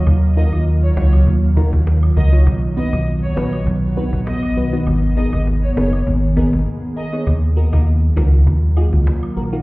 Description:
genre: dancehall.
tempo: 100 BPM.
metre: 4/4.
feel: straight.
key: Eb minor.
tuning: A4 = 441 Hz.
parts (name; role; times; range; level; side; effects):
wavetable chord stab; accompaniment; 0.0-9.6 s; B3 to Db5; -24 LUFS; equal; none.
ethereal airy pad; sustained chords; 0.0-9.6 s; Eb3 to Ab4; -22 LUFS; equal; ensemble chorus, built-in reverb.
solid FM bass; bass; 0.0-9.6 s; Gb1 to Eb2; -15 LUFS; equal; none.
cajon; drums; 0.1-9.2 s; none; -21 LUFS; equal; none.
woodblock and cabasa; percussion; 0.1-9.5 s; none; -42 LUFS; right 2 dB; none.
warm studio violin section; melody; 0.4-7.1 s; Db5 to Eb5; -30 LUFS; equal; digital delay.
room: small room ambience.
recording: heard muffled through a wall, stone room reverb, EQ.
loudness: -14 LUFS.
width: side -21 dB against mid.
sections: 0.0-7.3 A section; 7.3-9.6 B section.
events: break 6.7-7.3.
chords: 0.0 Ebmadd9; 2.5 B; 4.9 Abmadd9; 7.3 Ebmadd9.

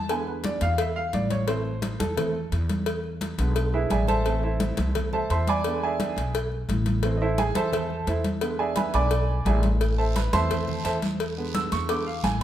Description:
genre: latin, salsa.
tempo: 173 BPM.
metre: 4/4.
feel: straight.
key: A harmonic minor.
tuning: A4 = 440 Hz.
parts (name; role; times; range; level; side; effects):
clear grand piano; accompaniment; 0.0-12.4 s; D3 to E6; -27 LUFS; right 3 dB; none.
upright bass; bass; 0.0-12.4 s; A1 to E2; -27 LUFS; equal; none.
congas; percussion; 0.1-12.4 s; none; -31 LUFS; left 1 dB; none.
cowbell; percussion; 0.1-12.4 s; none; -32 LUFS; left 3 dB; none.
guiro; percussion; 9.8-12.4 s; none; -40 LUFS; right 6 dB; none.
room: moderate large studio reverb, RT60 1.1 s.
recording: band playing live in one room.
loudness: -23 LUFS.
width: side -11 dB against mid.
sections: 0.0-12.4 A section.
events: grand piano solo 0.0-12.4.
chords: 0.1 E7; 1.5 Am; 5.6 E7; 7.0 Am; 8.4 E7; 9.8 Am; 11.2 E7.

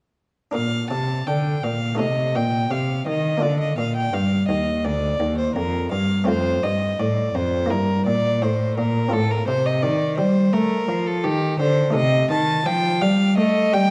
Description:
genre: classical, baroque-style sonata movement with continuo.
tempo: 84 BPM.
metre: 4/4.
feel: rubato.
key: Bb major.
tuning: A4 = 440 Hz.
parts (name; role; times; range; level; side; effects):
rich violin; melody; 0.5-13.9 s; G4 to A5; -26 LUFS; equal; none.
buff-stop harpsichord; accompaniment; 0.5-13.9 s; D2 to Bb4; -29 LUFS; equal; none.
rich cello; bass; 0.6-13.9 s; D2 to A3; -24 LUFS; equal; none.
room: wet recital hall reverb, RT60 1.8 s.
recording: dark, warm production.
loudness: -21 LUFS.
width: mono.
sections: 0.5-13.9 A section.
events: none.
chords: 0.5 Bb; 2.0 Adim; 3.4 Bb; 6.3 F; 7.7 Edim/G; 9.1 F/A; 12.0 Am7b5/C.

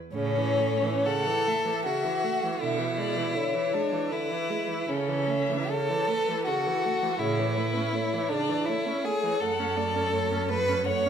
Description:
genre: classical, slow romantic movement for string quartet.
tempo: 63-84 BPM.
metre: 3/4.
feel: rubato.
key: A major.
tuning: A4 = 445 Hz.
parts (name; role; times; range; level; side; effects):
clear violin; second line; 0.1-11.1 s; C#4 to C#5; -27 LUFS; left 1 dB; none.
warm viola; accompaniment; 0.1-11.1 s; C#3 to C#4; -32 LUFS; right 5 dB; none.
rich cello; bass; 0.1-11.1 s; F#2 to C#3; -33 LUFS; right 5 dB; none.
rich violin; melody; 0.2-11.1 s; A4 to F#5; -33 LUFS; left 7 dB; none.
room: wet recital hall reverb, RT60 1.4 s.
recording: minimal, uncompressed stereo recording.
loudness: -25 LUFS.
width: side -8 dB against mid.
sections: 0.1-11.1 A section.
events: none.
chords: 0.1 A; 2.6 E7/B; 4.9 A/C#; 7.2 A; 9.4 F#m.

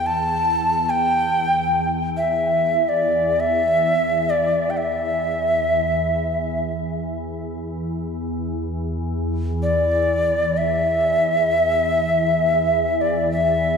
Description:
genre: world meditative, free-time meditation music.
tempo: free time.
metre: none.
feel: none.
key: E minor pentatonic.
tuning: A4 = 440 Hz.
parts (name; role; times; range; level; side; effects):
Native American-style cedar flute; melody; 0.0-13.8 s; D5 to A5; -18 LUFS; equal; ping-pong delay.
organ-like drone; drone; 0.0-13.8 s; E2; -25 LUFS; equal; ensemble chorus, built-in reverb.
room: wet lush hall reverb, RT60 3.0 s.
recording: dreamy mix soaked in reverb.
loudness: -18 LUFS.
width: side -6 dB against mid.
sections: 0.0-13.8 A section.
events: none.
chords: none.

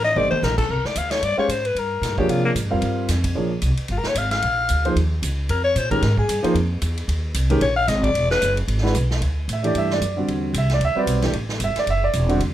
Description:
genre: modal jazz.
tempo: 225 BPM.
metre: 4/4.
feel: swing 58% on 8ths.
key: C phrygian, A dorian from 9.2 s.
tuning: A4 = 442 Hz.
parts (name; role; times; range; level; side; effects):
growling alto saxophone; second line; 0.0-8.6 s; Bb3 to F5; -21 LUFS; left 3 dB; none.
upright bass; bass; 0.0-12.5 s; E1 to C3; -22 LUFS; equal; none.
warm concert grand piano; accompaniment; 0.2-12.4 s; D3 to F5; -22 LUFS; right 2 dB; none.
swinging big-band drum kit; drums; 0.2-12.5 s; crash cymbal, hi-hat, kick drum, ride cymbal, snare drum, toms; -29 LUFS; right 1 dB; none.
room: light reverb.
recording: none.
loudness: -18 LUFS.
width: side -12 dB against mid.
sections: 0.7-9.2 A section; 9.2-12.5 A section.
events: alto saxophone solo 0.0-9.2; drum fill 0.2.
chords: 0.0 F9sus4 (rootless); 0.7 C9sus4; 5.0 Eb9sus4; 8.1 Eadd9; 9.2 A9sus4.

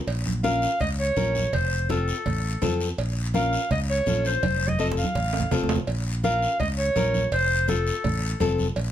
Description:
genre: latin, cumbia.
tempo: 166 BPM.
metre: 4/4.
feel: straight.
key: Bb harmonic minor.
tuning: A4 = 439 Hz.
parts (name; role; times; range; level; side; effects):
fingered electric bass; bass; 0.1-8.9 s; F1 to F2; -27 LUFS; equal; none.
congas; percussion; 0.1-8.9 s; none; -30 LUFS; right 2 dB; none.
cowbell and timbales; percussion; 0.1-8.9 s; none; -33 LUFS; right 6 dB; none.
guiro; percussion; 0.1-8.9 s; none; -36 LUFS; left 4 dB; none.
clear clarinet; melody; 0.4-8.6 s; A4 to F5; -25 LUFS; right 1 dB; none.
nylon-string guitar; accompaniment; 0.4-8.7 s; C4 to Bb4; -28 LUFS; left 5 dB; none.
room: light reverb.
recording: none.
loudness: -22 LUFS.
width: side -11 dB against mid.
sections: 0.1-8.9 A section.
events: drum fill 4.4-5.9.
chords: 0.1 Bbm; 1.5 F; 3.0 Bbm; 4.4 F; 5.9 Bbm; 7.3 F.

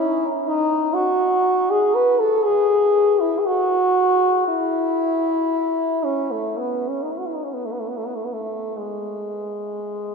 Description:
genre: classical, free, expressive piece for unaccompanied French horn.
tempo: 48-61 BPM.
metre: 4/4.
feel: rubato.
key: E major.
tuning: A4 = 438 Hz.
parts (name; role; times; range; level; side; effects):
warm French horn; solo; 0.0-10.1 s; G#3 to B4; -18 LUFS; equal; none.
room: wet cathedral reverb, RT60 5.8 s.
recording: minimal, uncompressed stereo recording.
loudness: -18 LUFS.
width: side -5 dB against mid.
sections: 0.0-10.1 A section.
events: none.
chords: none.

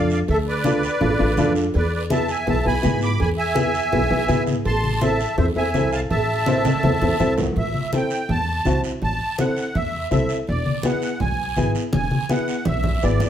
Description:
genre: latin, cumbia.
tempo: 165 BPM.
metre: 4/4.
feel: straight.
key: A harmonic minor, A dorian from 7.6 s.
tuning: A4 = 440 Hz.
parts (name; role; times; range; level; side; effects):
musette accordion; melody; 0.0-13.3 s; A4 to D6; -24 LUFS; right 1 dB; none.
warm upright piano; accompaniment; 0.0-13.3 s; B3 to C5; -23 LUFS; left 1 dB; none.
upright bass; bass; 0.0-13.2 s; E1 to G#2; -24 LUFS; equal; none.
guiro; percussion; 0.1-13.3 s; none; -38 LUFS; right 5 dB; none.
cowbell and timbales; percussion; 0.3-7.5 s; none; -29 LUFS; right 1 dB; none.
congas; percussion; 0.6-13.3 s; none; -26 LUFS; equal; none.
room: wet studio reverb, RT60 0.8 s.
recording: heard from further back in the room.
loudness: -18 LUFS.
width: side -10 dB against mid.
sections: 0.0-7.6 A section; 7.6-13.3 B section.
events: drum fill 6.5-7.6, 11.9-13.3.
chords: 0.0 Dm; 1.7 E; 4.7 Am; 10.5 E7.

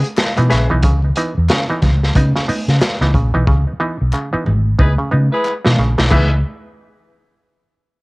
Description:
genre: funk.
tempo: 91 BPM.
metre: 4/4.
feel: swing 60% on 16ths.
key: C# dorian.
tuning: A4 = 441 Hz.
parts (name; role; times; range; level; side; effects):
semi-hollow electric guitar; accompaniment; 0.0-0.7, 6.1-6.3 s; G#4 to E5; -23 LUFS; left 3 dB; warbly pitch drift, plate reverb.
crunchy breakbeat drum kit; drums; 0.0-6.3 s; crash cymbal, hi-hat, kick drum, snare drum; -17 LUFS; equal; none.
group handclap; percussion; 0.2-6.4 s; none; -30 LUFS; left 3 dB; none.
muted clav; stabs; 0.4-6.4 s; C#3 to D#4; -21 LUFS; right 1 dB; overdrive, plate reverb.
vintage muted fingered electric bass; bass; 0.4-6.4 s; G#1 to C#3; -14 LUFS; equal; none.
congas; percussion; 0.4-6.4 s; none; -27 LUFS; right 2 dB; none.
mellow horn section; second line; 4.8-6.3 s; G#3 to B4; -21 LUFS; left 1 dB; plate reverb.
room: little or no reverb.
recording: home recording on cassette.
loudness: -13 LUFS.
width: side -25 dB against mid.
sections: 0.0-6.1 A section; 6.1-8.0 B section.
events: drum fill 3.5-6.1; band accent 3.5-6.1.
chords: 0.0 C#m7.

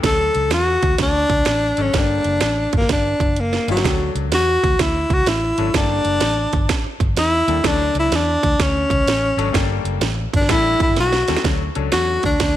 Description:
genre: uptempo 1960s-style soul.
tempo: 126 BPM.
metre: 4/4.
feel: swing 66% on 8ths.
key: D major.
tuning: A4 = 440 Hz.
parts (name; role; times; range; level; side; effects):
clear concert grand piano; accompaniment; 0.0-12.3 s; F#3 to A4; -27 LUFS; left 12 dB; none.
vintage muted fingered electric bass; bass; 0.0-12.6 s; F#1 to E2; -23 LUFS; equal; none.
house drum kit; drums; 0.0-12.5 s; hi-hat, kick drum, snare drum; -21 LUFS; right 2 dB; none.
warm tenor saxophone; melody; 0.1-12.6 s; F#3 to A4; -18 LUFS; left 1 dB; none.
room: light reverb, digital ambience.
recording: 1960s-style stereo.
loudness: -16 LUFS.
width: side -12 dB against mid.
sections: 0.0-11.4 A section; 11.4-12.6 B section.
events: tenor saxophone solo 0.0-11.4; drum fill 3.4-3.8, 11.0-11.4.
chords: 0.0 Dmaj7; 1.9 Gmadd9; 3.8 Dmaj7; 5.7 Gmadd9; 7.6 Dmaj7; 9.5 Gmadd9; 10.5 A7sus4; 11.4 Dmaj7.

